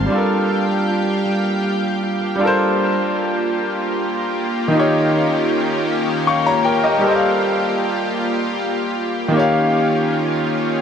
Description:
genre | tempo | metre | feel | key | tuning
R&B | 52 BPM (dotted quarters) | 6/8 | straight | G minor | A4 = 440 Hz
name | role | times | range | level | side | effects
electric guitar at the edge of break-up | second line | 0.0-3.0 s | G3 to F4 | -23 LUFS | right 2 dB | wide subtle chorus, diffuse ambient delay
clear grand piano | accompaniment | 0.0-10.8 s | Eb3 to Db6 | -18 LUFS | left 1 dB | none
lush unison pad | sustained chords | 0.0-10.8 s | Eb3 to A5 | -21 LUFS | equal | chorus
room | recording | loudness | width
wet huge ambient reverb, RT60 4.4 s | dreamy mix soaked in reverb | -16 LUFS | side -7 dB against mid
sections
0.0-2.4 A section; 2.4-10.8 B section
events
none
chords
0.1 Gm9; 2.4 Gm11; 4.7 Eb9; 7.0 Gm11; 9.3 Eb9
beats
| 0.10 1.26 | 2.41 3.57 | 4.72 5.87 | 7.03 8.18 | 9.34 10.49

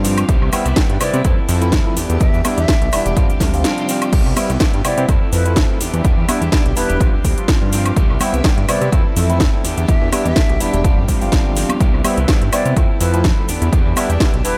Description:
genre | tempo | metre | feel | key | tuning
filtered disco house | 125 BPM | 4/4 | swing 54% on 16ths | unclear | A4 = 440 Hz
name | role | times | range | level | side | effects
barky tine electric piano | accompaniment | 0.0-14.6 s | F3 to F4 | -26 LUFS | equal | overdrive, phaser, sidechain pumping, dub echo
string machine, full ensemble | sustained chords | 0.0-14.6 s | C4 to F5 | -31 LUFS | equal | phaser, ensemble chorus, sidechain pumping
electric guitar at the edge of break-up | riff | 0.0-14.6 s | E3 to A4 | -28 LUFS | equal | sidechain pumping, dub echo
fat analog bass | bass | 0.0-14.5 s | E1 to C3 | -21 LUFS | equal | sidechain pumping
house drum kit | drums | 0.0-14.6 s | crash cymbal, hi-hat, shaker, snare drum, woodblock | -25 LUFS | equal | overdrive, sidechain pumping on hats, sidechain pumping on perc, sidechain pumping on cymbals, dub echo
egg shaker and congas | percussion | 0.0-14.6 s | none | -32 LUFS | equal | none
electronic kick drum | drums | 0.3-14.3 s | none | -18 LUFS | equal | none
breathy concert flute | melody | 1.0-14.6 s | B4 to E5 | -29 LUFS | equal | sidechain pumping, dub echo
room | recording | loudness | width
little or no reverb | echo-heavy mix | -16 LUFS | mono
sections
0.0-14.6 A section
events
none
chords
0.3 Cmaj7; 1.2 Fmaj7; 2.0 Em7; 3.2 G7sus4; 4.1 Cmaj7; 5.1 Fmaj7; 5.8 Em7; 7.0 G7sus4; 8.0 Cmaj7; 8.9 Fmaj7; 9.6 Em7; 10.8 G7sus4; 11.8 Cmaj7; 12.8 Fmaj7; 13.5 Em7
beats
| 0.29 0.77 1.25 1.73 | 2.21 2.69 3.17 3.65 | 4.13 4.61 5.09 5.57 | 6.05 6.53 7.01 7.49 | 7.97 8.45 8.93 9.41 | 9.89 10.37 10.85 11.33 | 11.81 12.29 12.77 13.25 | 13.73 14.21

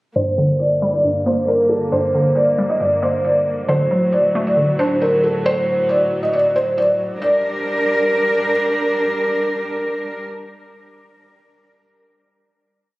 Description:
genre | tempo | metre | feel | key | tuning
hip hop, trap | 136 BPM | 4/4 | half-time | G harmonic minor | A4 = 441 Hz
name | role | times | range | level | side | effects
felt-muted upright piano | melody | 0.2-8.5 s | A4 to Eb5 | -17 LUFS | equal | low-pass filter
hollow square pluck | accompaniment | 0.2-5.9 s | G2 to D4 | -21 LUFS | equal | chorus, low-pass filter
dark chamber string section | sustained chords | 0.2-10.2 s | D2 to Bb4 | -21 LUFS | equal | low-pass filter
room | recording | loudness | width
moderate huge ambient reverb, RT60 4.4 s | recorded on a phone in the room, studio reverb, compression | -15 LUFS | side -20 dB against mid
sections
0.2-7.2 breakdown; 7.2-10.7 final chord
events
filter sweep 0.2-7.2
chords
0.2 Gm; 3.7 D; 7.2 Gm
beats
| 0.16 0.60 1.04 1.48 | 1.92 2.37 2.81 3.25 | 3.69 4.13 4.57 5.01 | 5.45 5.89 6.33 6.78 | 7.22 7.66 8.10 8.54 | 8.98 9.42 9.87

